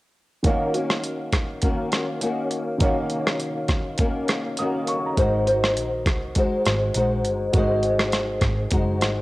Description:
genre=indie pop, bedroom pop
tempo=102 BPM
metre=4/4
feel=swing 55% on 16ths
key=Eb dorian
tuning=A4 = 440 Hz
part: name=warm upright piano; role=accompaniment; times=0.4-9.2 s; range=Eb3 to Eb6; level=-29 LUFS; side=right 2 dB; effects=cassette tape
part: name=dusty soul sampler-style drum kit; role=drums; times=0.4-9.2 s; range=hi-hat, kick drum, rim click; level=-23 LUFS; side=equal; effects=overdrive, cassette tape
part: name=flamenco guitar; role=accompaniment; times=0.5-9.2 s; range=Eb3 to C5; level=-24 LUFS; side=left 1 dB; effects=ensemble chorus, warbly pitch drift, cassette tape
part: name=vintage muted picked electric bass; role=bass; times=5.2-9.2 s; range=Gb1 to C2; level=-26 LUFS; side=equal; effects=none
room=light reverb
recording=home recording on cassette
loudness=-20 LUFS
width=side -19 dB against mid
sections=0.4-9.2 A section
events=none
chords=0.4 Ebm7; 5.2 Ab7

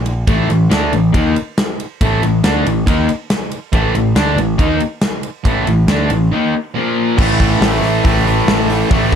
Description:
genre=hard rock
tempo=139 BPM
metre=4/4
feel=straight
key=unclear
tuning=A4 = 439 Hz
part: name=growling picked electric bass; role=bass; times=0.0-9.2 s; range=A1 to D#2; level=-18 LUFS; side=equal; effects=overdrive
part: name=gated 80s drum kit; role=drums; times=0.1-9.2 s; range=crash cymbal, hi-hat, kick drum, ride cymbal, snare drum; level=-17 LUFS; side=equal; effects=none
part: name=distorted electric guitar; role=riff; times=0.3-9.2 s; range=A2 to D#4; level=-18 LUFS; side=left 11 dB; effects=distortion
part: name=distorted electric guitar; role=riff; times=0.3-9.2 s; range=A2 to D#4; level=-18 LUFS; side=right 9 dB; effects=distortion
part: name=distorted electric guitar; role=riff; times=7.2-9.2 s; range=A2 to A3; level=-19 LUFS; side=right 1 dB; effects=overdrive
room=moderate studio ambience, RT60 0.5 s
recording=none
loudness=-12 LUFS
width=side -8 dB against mid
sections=0.0-7.2 A section; 7.2-9.2 B section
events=break 6.3-7.2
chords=0.3 A5; 6.8 Bb5; 7.2 A5

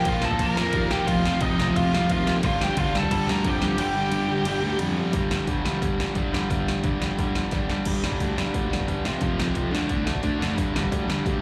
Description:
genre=punk rock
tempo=177 BPM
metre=4/4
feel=straight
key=G minor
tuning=A4 = 440 Hz
part: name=biting lead guitar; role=melody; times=0.0-4.8 s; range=Eb4 to Bb5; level=-29 LUFS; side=equal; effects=overdrive
part: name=crunchy overdriven guitar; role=riff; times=0.0-11.4 s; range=F2 to D4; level=-33 LUFS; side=equal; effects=none
part: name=distorted electric guitar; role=riff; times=0.0-11.4 s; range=F2 to D4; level=-30 LUFS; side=equal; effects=distortion, slapback echo
part: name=fuzz guitar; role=riff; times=0.0-5.1 s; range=F2 to Bb3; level=-33 LUFS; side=equal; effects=none
part: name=modern bright picked electric bass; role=bass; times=0.0-11.4 s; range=F1 to F2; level=-32 LUFS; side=equal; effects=none
part: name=punchy analog drum machine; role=drums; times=0.1-11.3 s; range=crash cymbal, hi-hat, kick drum, ride cymbal, snare drum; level=-30 LUFS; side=equal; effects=none
room=little or no reverb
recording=live gig heard through the venue's PA, club reverb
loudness=-24 LUFS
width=mono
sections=0.0-5.1 A section; 5.1-7.9 B section; 7.9-11.4 C section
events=kick and snare drop out 3.8-5.1; drum fill 7.5-7.9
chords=0.0 Bb5; 1.1 F5; 2.4 Gm; 5.1 G5; 9.0 F5; 9.7 D; 10.6 G5

